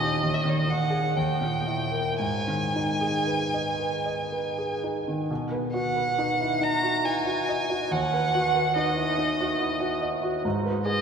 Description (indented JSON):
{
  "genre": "classical, romantic duo for violin and grand piano",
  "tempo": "55-72 BPM",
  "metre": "3/4",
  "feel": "rubato",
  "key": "G# minor, B major from 5.3 s",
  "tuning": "A4 = 436 Hz",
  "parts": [
    { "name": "rich violin", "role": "melody", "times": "0.0-11.0 s", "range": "C#5 to A#5", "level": "-27 LUFS", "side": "right 2 dB", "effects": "none" },
    { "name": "clear grand piano", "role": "accompaniment", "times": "0.0-11.0 s", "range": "D#2 to D#5", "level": "-26 LUFS", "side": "equal", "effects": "none" }
  ],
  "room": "wet cathedral reverb, RT60 4.3 s",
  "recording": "studio reverb",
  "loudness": "-24 LUFS",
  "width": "side -6 dB against mid",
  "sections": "0.0-5.3 A section; 5.3-11.0 B section",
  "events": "none",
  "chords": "0.2 G#5/D#; 1.2 D#; 2.2 G#m; 5.3 B; 7.9 B/D#; 10.5 G#m"
}